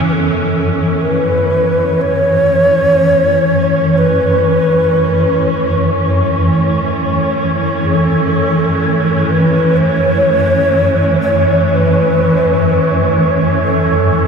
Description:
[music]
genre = ambient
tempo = free time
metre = none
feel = none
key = F# minor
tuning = A4 = 439 Hz
[part]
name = rich symphonic cello section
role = sustained chords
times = 0.0-14.3 s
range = E3 to C#4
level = -21 LUFS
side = right 1 dB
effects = none
[part]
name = swarming drone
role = drone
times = 0.0-14.3 s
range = F#2 to E3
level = -14 LUFS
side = equal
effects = built-in reverb
[part]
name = mellow long shakuhachi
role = melody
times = 0.1-14.3 s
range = A4 to C#5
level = -15 LUFS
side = equal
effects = ping-pong delay
[part]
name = wind-like tuned noise texture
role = texture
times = 0.4-14.3 s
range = C#5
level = -20 LUFS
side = equal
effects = built-in reverb
[sound]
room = wet huge ambient reverb, RT60 7.9 s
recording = dreamy mix soaked in reverb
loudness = -10 LUFS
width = side -6 dB against mid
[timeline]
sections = 0.1-14.3 A section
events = fade-in on cello section 0.1-14.3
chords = 0.1 F#m7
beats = free time

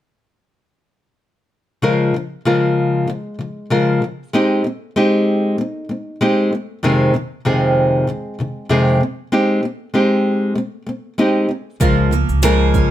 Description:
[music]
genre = acoustic pop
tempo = 96 BPM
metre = 4/4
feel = swing 55% on 16ths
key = Ab major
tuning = A4 = 440 Hz
[part]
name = nylon-string guitar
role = accompaniment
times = 1.8-12.9 s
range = F2 to Bb4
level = -15 LUFS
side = left 1 dB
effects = none
[part]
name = picked steel-string acoustic guitar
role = arpeggios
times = 11.8-12.9 s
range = F3 to Ab4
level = -21 LUFS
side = right 8 dB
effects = none
[part]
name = upright bass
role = bass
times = 11.8-12.9 s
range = Ab1 to Db2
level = -17 LUFS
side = right 1 dB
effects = none
[part]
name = minimal click drum kit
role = drums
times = 11.8-12.9 s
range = kick drum, shaker, snare drum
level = -19 LUFS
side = right 1 dB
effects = none
[sound]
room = light reverb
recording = none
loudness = -15 LUFS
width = side -12 dB against mid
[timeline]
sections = 1.8-12.9 A section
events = none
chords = 1.8 Db6; 4.3 Abmaj7; 6.8 Fm7; 9.0 Abmaj7; 11.8 Db6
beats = | 1.83 2.46 3.08 3.71 | 4.33 4.96 5.58 6.21 | 6.83 7.45 8.08 8.70 | 9.32 9.95 10.57 11.19 | 11.81 12.44

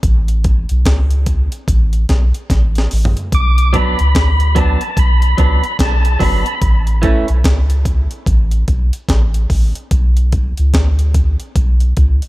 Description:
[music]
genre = dub reggae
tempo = 73 BPM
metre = 4/4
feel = swing 61% on 16ths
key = B minor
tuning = A4 = 440 Hz
[part]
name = soft dub sub bass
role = bass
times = 0.0-12.2 s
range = G1 to D2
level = -13 LUFS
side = equal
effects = none
[part]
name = breakbeat sampler-style drum kit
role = drums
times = 0.0-12.3 s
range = hi-hat, kick drum, snare drum, toms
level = -16 LUFS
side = equal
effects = none
[part]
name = tonewheel organ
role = melody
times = 3.3-6.6 s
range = A5 to D6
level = -20 LUFS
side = equal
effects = overdrive, fast rotary speaker, dub echo
[part]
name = clean electric guitar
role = accompaniment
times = 3.7-7.3 s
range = E3 to D4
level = -21 LUFS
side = right 3 dB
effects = dub echo
[sound]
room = little or no reverb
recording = none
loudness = -12 LUFS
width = side -18 dB against mid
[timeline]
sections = 0.0-12.3 A section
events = break 0.0-3.3; drum fill 2.5-3.3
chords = 0.0 A; 3.3 Bm; 6.6 A; 9.9 Bm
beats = | 0.03 0.85 1.68 2.50 | 3.33 4.15 4.97 5.79 | 6.62 7.44 8.27 9.09 | 9.91 10.73 11.56

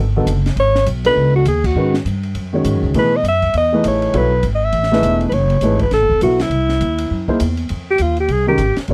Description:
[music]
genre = modal jazz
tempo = 202 BPM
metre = 4/4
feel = swing 61% on 8ths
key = unclear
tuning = A4 = 438 Hz
[part]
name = upright bass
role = bass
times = 0.0-8.9 s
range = E1 to B2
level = -21 LUFS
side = equal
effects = none
[part]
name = dark baby grand piano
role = accompaniment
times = 0.2-8.9 s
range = C3 to E5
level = -21 LUFS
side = equal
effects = none
[part]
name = compact cocktail drum kit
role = drums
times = 0.3-8.9 s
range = crash cymbal, hi-hat, kick drum, ride cymbal, snare drum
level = -30 LUFS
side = equal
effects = none
[part]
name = mellow alto saxophone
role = melody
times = 0.6-8.8 s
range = E4 to E5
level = -19 LUFS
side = equal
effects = none
[sound]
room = little or no reverb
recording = dry, close 1970s-style studio recording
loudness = -16 LUFS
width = mono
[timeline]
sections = 0.0-7.7 A section; 7.7-8.9 B section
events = band accent 1.6; alto saxophone solo 7.7-8.9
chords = 0.0 C#9sus4; 3.0 B9sus4; 6.5 C(#9); 7.7 Fm9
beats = 0.28 | 0.57 0.87 1.17 1.47 | 1.76 2.06 2.36 2.65 | 2.95 3.25 3.55 3.84 | 4.14 4.44 4.73 5.03 | 5.33 5.62 5.92 6.22 | 6.51 6.81 7.11 7.40 | 7.70 8.00 8.29 8.59 | 8.89

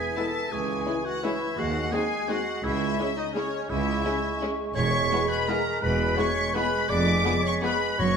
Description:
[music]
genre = classical, orchestral ballroom waltz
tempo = 169 BPM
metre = 3/4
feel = uneven beats, rubato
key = unclear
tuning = A4 = 440 Hz
[part]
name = rich studio violin section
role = melody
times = 0.0-8.2 s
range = C#5 to D6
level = -31 LUFS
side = left 4 dB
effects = none
[part]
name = hollow concert flute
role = second line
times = 0.0-8.2 s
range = C#6 to B#6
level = -34 LUFS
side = equal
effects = none
[part]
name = warm clarinet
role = second line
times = 0.0-8.2 s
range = C#4 to D5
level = -34 LUFS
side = left 2 dB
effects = none
[part]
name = warm oboe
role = second line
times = 0.0-8.2 s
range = C#4 to D5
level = -33 LUFS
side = right 2 dB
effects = none
[part]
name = dark bassoon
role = accompaniment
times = 0.0-8.2 s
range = E3 to G#3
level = -32 LUFS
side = right 1 dB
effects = none
[part]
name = warm studio violin section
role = second line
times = 0.2-7.7 s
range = B3 to Ab4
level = -36 LUFS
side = left 5 dB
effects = none
[part]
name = rich studio viola section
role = accompaniment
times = 0.2-7.7 s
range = F3 to G#3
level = -37 LUFS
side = equal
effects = none
[part]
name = mellow French horn section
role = sustained chords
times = 0.2-7.8 s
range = B3 to G#4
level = -36 LUFS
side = left 2 dB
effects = none
[part]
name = rich studio cello section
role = bass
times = 0.5-8.2 s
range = C#2 to F#2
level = -32 LUFS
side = right 2 dB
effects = none
[part]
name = rich studio double bass section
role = bass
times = 0.5-8.2 s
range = E1 to D#2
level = -32 LUFS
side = right 3 dB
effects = none
[part]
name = timpani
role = percussion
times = 8.0-8.2 s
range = F#2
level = -27 LUFS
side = right 2 dB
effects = none
[sound]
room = moderate scoring stage reverb, RT60 1.6 s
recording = minimal, uncompressed stereo recording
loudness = -23 LUFS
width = side -6 dB against mid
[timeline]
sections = 0.0-8.2 A section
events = none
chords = 0.0 E; 0.5 C#m; 1.6 G#7/D#; 2.6 C#m; 4.8 E; 6.9 Fdim7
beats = 0.17 | 0.52 0.87 1.24 | 1.58 1.93 2.30 | 2.64 2.99 3.35 | 3.70 4.05 4.42 | 4.76 5.11 5.48 | 5.83 6.18 6.55 | 6.90 7.25 7.63 | 7.99

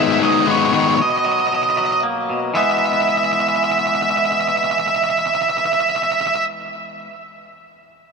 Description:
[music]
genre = rock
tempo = 115 BPM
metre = 3/4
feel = straight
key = E lydian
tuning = A4 = 441 Hz
[part]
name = octave-fuzz lead guitar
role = melody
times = 0.0-6.4 s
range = C#5 to E5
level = -17 LUFS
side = right 3 dB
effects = distortion, analog delay
[part]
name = twangy electric guitar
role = arpeggios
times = 0.0-7.1 s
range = G#2 to B3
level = -23 LUFS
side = left 2 dB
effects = analog delay
[part]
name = overdriven electric guitar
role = riff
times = 0.0-1.0 s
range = G#2 to D#4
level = -19 LUFS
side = left 11 dB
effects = none
[sound]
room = moderate huge ambient reverb, RT60 5.1 s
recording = none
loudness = -15 LUFS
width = side -4 dB against mid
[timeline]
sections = 0.0-2.5 A section; 2.5-5.7 B section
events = none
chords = 0.0 G#m7; 1.0 Bmaj7; 2.5 E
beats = 0.46 | 0.98 1.50 2.02 | 2.55 3.07 3.59 | 4.11 4.63 5.15

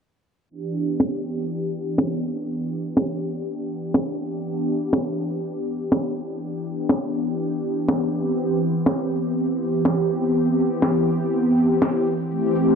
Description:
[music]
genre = nu-disco, nu disco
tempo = 122 BPM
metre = 4/4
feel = swing 56% on 16ths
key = E minor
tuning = A4 = 441 Hz
[part]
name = warm analog pad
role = accompaniment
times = 0.5-12.8 s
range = E3 to G4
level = -22 LUFS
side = equal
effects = lush chorus, ping-pong delay
[part]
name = cabasa and snare drum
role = drums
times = 0.5-12.8 s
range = none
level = -23 LUFS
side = equal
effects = low-pass filter on snare, low-pass filter on perc, low-pass filter on room
[sound]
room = moderate plate reverb, RT60 1.9 s, studio ambience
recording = low-pass filter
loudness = -21 LUFS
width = side -6 dB against mid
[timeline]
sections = 0.5-12.8 A section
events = filter sweep on analog synth pad 0.5-12.8; filter sweep 0.5-12.8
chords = 0.5 Em7; 8.1 Cmaj7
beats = | 0.50 1.00 1.49 1.98 | 2.47 2.96 3.46 3.95 | 4.44 4.93 5.42 5.91 | 6.41 6.90 7.39 7.88 | 8.37 8.87 9.36 9.85 | 10.34 10.83 11.32 11.82 | 12.31

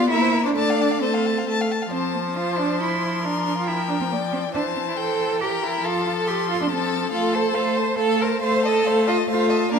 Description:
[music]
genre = quick classical-period movement for string quartet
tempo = 138 BPM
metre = 3/4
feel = rubato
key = F major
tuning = A4 = 442 Hz
[part]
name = clear violin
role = melody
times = 0.0-9.8 s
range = C5 to C6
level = -29 LUFS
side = left 10 dB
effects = none
[part]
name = clear violin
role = second line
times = 0.0-9.8 s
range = A4 to A5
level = -27 LUFS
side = left 5 dB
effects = none
[part]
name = rich viola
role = accompaniment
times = 0.0-9.8 s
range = E3 to Bb3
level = -24 LUFS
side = equal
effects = none
[part]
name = clear cello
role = bass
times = 0.0-9.8 s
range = Bb3 to C5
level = -23 LUFS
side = right 4 dB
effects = none
[sound]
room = moderate recital hall reverb, RT60 1.5 s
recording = minimal, uncompressed stereo recording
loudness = -20 LUFS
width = side -6 dB against mid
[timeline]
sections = 0.0-1.9 A section; 1.9-9.8 A section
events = none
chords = 0.1 C7/Bb; 0.6 F/A; 1.9 F; 4.5 C7/E; 5.8 F; 7.1 F/A; 8.4 F7/A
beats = 0.10 | 0.55 1.01 1.47 | 1.92 2.37 2.80 | 3.24 3.67 4.11 | 4.54 4.97 5.40 | 5.84 6.27 6.70 | 7.12 7.56 7.99 | 8.42 8.85 9.28 | 9.71

